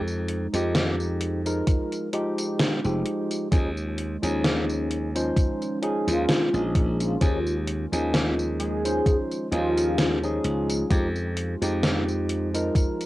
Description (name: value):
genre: vaporwave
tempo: 65 BPM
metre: 4/4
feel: swing 55% on 16ths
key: unclear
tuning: A4 = 440 Hz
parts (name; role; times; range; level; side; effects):
- warbly tape-like pad; sustained chords; 0.0-13.1 s; Eb3 to G4; -35 LUFS; equal; chorus, built-in reverb, cassette tape, plate reverb
- glassy slap bass; bass; 0.0-12.7 s; F1 to F2; -28 LUFS; equal; none
- gated 80s digital drum machine; drums; 0.1-13.1 s; hi-hat, snare drum, tambourine; -27 LUFS; equal; gated reverb, gated reverb snare, overdrive, cassette tape
- barky tine electric piano; accompaniment; 0.5-13.1 s; F3 to C5; -28 LUFS; equal; wide subtle chorus, cassette tape, tape echo
- electronic kick drum; drums; 1.7-13.0 s; none; -22 LUFS; equal; overdrive, cassette tape
- warm velvety synth lead; melody; 6.1-10.4 s; F4 to Ab4; -28 LUFS; equal; chorus, tremolo, tape echo
room: moderate studio reverb, RT60 0.5 s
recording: home recording on cassette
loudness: -22 LUFS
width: side -17 dB against mid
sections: 0.0-13.1 A section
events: none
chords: 0.0 Fm9; 3.5 Eb9sus4; 10.9 Fm9